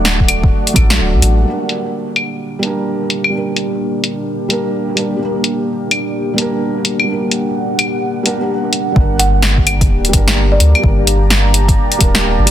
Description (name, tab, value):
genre	future garage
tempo	128 BPM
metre	4/4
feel	swing 62% on 16ths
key	G harmonic minor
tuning	A4 = 442 Hz
part	buzzing marimba with soft mallets	melody	0.0-0.1, 9.2-10.8 s	D5 to F#5	-23 LUFS	right 1 dB	vintage 12-bit sampler grit, tape echo
part	felt-muted upright piano	accompaniment	0.0-12.5 s	F#3 to Bb4	-19 LUFS	right 2 dB	sidechain pumping, dub echo
part	deep dark ambient pad	sustained chords	0.0-12.5 s	A3 to Bb5	-21 LUFS	left 1 dB	chorus, built-in reverb, sidechain pumping
part	soft dub sub bass	bass	0.0-1.4, 9.0-12.5 s	D1 to D2	-13 LUFS	equal	sidechain pumping
part	deep house drum kit	drums	0.1-12.5 s	claves, hi-hat, snare drum	-15 LUFS	left 2 dB	low-pass filter on hats, low-pass filter on snare, low-pass filter on perc, low-pass filter on room
part	electronic kick drum	drums	0.2-0.9, 9.0-12.1 s	none	-14 LUFS	equal	none
room	light reverb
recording	dense, heavily limited modern master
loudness	-12 LUFS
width	side -11 dB against mid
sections	0.0-1.5 A section; 1.5-9.0 B section; 9.0-12.5 C section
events	none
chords	0.0 D; 1.5 Gm